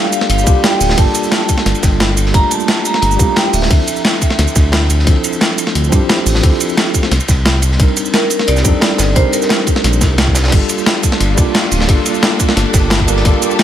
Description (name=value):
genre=liquid drum and bass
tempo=176 BPM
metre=4/4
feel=straight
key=G minor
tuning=A4 = 441 Hz
part: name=vibraphone with hard mallets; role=melody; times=0.0-4.5, 8.1-9.6 s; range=Bb4 to Bb5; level=-20 LUFS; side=right 1 dB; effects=tape echo
part: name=tine electric piano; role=accompaniment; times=0.0-13.6 s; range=F3 to Bb4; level=-18 LUFS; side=right 1 dB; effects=medium stereo tremolo
part: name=breakbeat sampler-style drum kit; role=drums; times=0.1-13.6 s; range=crash cymbal, hi-hat, shaker, snare drum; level=-16 LUFS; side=equal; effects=studio reverb
part: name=crunchy breakbeat drum kit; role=drums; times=0.1-13.6 s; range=hi-hat, ride cymbal, snare drum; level=-22 LUFS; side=equal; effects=high-pass filter on cymbals, studio reverb, high-pass filter on hats, high-pass filter on snare, high-pass filter on room
part: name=smooth synth bass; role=bass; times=0.3-13.3 s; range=D1 to G2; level=-15 LUFS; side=equal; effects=tube saturation
part: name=electronic kick drum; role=drums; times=0.5-13.3 s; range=none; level=-13 LUFS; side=equal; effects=studio reverb
part: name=rich symphonic string section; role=sustained chords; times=10.5-13.6 s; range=Bb3 to A4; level=-22 LUFS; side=left 3 dB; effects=none
room=studio ambience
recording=none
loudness=-10 LUFS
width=side -11 dB against mid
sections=0.0-10.5 A section; 10.5-13.6 A section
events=drop 0.0-10.5, 10.5-13.6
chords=0.0 Gm9; 3.7 Dm9; 7.1 Cm9; 10.5 Gm9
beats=0.30 0.64 | 0.98 1.32 1.66 2.00 | 2.34 2.68 3.02 3.37 | 3.71 4.05 4.39 4.73 | 5.07 5.41 5.75 6.09 | 6.43 6.77 7.12 7.46 | 7.80 8.14 8.48 8.82 | 9.16 9.50 9.84 10.18 | 10.52 10.87 11.21 11.55 | 11.89 12.23 12.57 12.91 | 13.25 13.59